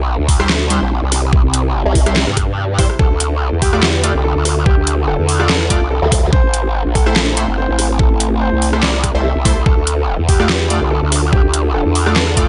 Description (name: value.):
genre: heavy wobble dubstep.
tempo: 144 BPM.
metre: 4/4.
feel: swing 53% on 16ths, half-time.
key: D minor.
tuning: A4 = 440 Hz.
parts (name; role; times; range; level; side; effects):
lush unison pad; sustained chords; 0.2-12.5 s; C3 to A4; -27 LUFS; equal; chorus, sidechain pumping.
growl bass; bass; 0.0-12.5 s; G1 to G2; -18 LUFS; equal; chorus, overdrive.
dubstep drum kit; drums; 0.3-12.5 s; handclaps, hi-hat, rim click, snare drum; -20 LUFS; equal; overdrive.
electronic kick drum; drums; 0.3-12.5 s; none; -16 LUFS; equal; none.
orchestra-hit-like synth stab; stabs; 0.4-12.5 s; G3 to D5; -25 LUFS; equal; built-in reverb, dub echo.
formant-sweep wobble bass; bass; 1.9-2.3, 6.0-6.3, 9.1-9.3 s; C2 to D2; -17 LUFS; equal; chorus, overdrive.
clear baby grand piano; melody; 3.0-12.4 s; G4 to E5; -25 LUFS; equal; dub echo.
room: little or no reverb.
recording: nothing above 10.6 kHz.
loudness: -15 LUFS.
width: mono.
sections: 0.0-12.5 A section.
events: none.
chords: 0.0 C; 3.0 Dm; 6.3 Am; 9.7 Dm.